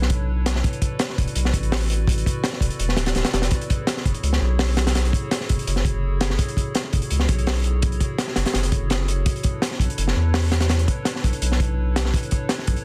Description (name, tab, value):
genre	drum and bass, jungle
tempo	167 BPM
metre	4/4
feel	straight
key	F# minor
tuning	A4 = 440 Hz
part	warbly tape-like pad	sustained chords	0.0-12.8 s	D4 to D5	-36 LUFS	equal	chorus, built-in reverb
part	saturated sub bass	bass	0.0-12.8 s	D1 to E2	-24 LUFS	equal	none
part	crunchy breakbeat drum kit	drums	0.0-12.8 s	hi-hat, kick drum, snare drum	-25 LUFS	equal	none
room	little or no reverb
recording	dense, heavily limited modern master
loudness	-22 LUFS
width	mono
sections	0.0-3.5 A section; 3.5-12.8 A section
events	drop 0.0-3.5, 3.5-12.8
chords	0.0 Bm11; 0.6 E9sus4; 3.5 F#m9; 9.3 Bm11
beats	0.28 | 0.64 1.00 1.36 1.72 | 2.08 2.44 2.80 3.15 | 3.52 3.87 4.23 4.59 | 4.95 5.31 5.67 6.03 | 6.39 6.75 7.11 7.47 | 7.83 8.19 8.54 8.90 | 9.26 9.62 9.98 10.34 | 10.70 11.06 11.42 11.78 | 12.14 12.50